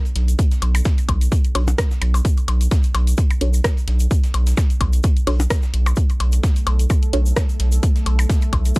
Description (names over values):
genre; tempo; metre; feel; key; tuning
minimal techno; 129 BPM; 4/4; swing 55% on 16ths; B minor; A4 = 438 Hz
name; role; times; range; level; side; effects
deep dark ambient pad; texture; 0.1-8.8 s; B3 to F#5; -42 LUFS; right 1 dB; none
dusty soul sampler-style drum kit; drums; 0.1-8.8 s; hi-hat, snare drum; -38 LUFS; left 1 dB; overdrive, sidechain pumping on hats, high-pass filter on hats, high-pass filter on snare, high-pass filter on room
tube shaker; percussion; 0.1-8.8 s; none; -35 LUFS; left 2 dB; none
round analog bass; bass; 0.2-8.7 s; B1; -16 LUFS; equal; sidechain pumping
house drum kit; drums; 0.2-8.8 s; hi-hat, rim click; -26 LUFS; left 1 dB; none
electronic kick drum; drums; 0.4-8.8 s; none; -18 LUFS; equal; none
percussion blips; percussion; 0.6-8.6 s; none; -27 LUFS; left 3 dB; overdrive, tape echo
filtered dub chord stab; stabs; 1.6-7.2 s; D4 to C#5; -26 LUFS; right 2 dB; chorus, tape echo
pulsing gated texture; texture; 6.3-8.8 s; A3 to A4; -33 LUFS; left 1 dB; chorus, built-in reverb, sidechain pumping
room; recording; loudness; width
little or no reverb; dark, warm production; -16 LUFS; side -24 dB against mid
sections
0.0-8.8 A section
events
filter sweep on synth stab 0.0-8.8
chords
0.0 Bm7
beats
| 0.39 0.85 1.32 1.78 | 2.25 2.71 3.18 3.64 | 4.11 4.57 5.04 5.50 | 5.97 6.43 6.90 7.37 | 7.83 8.29 8.76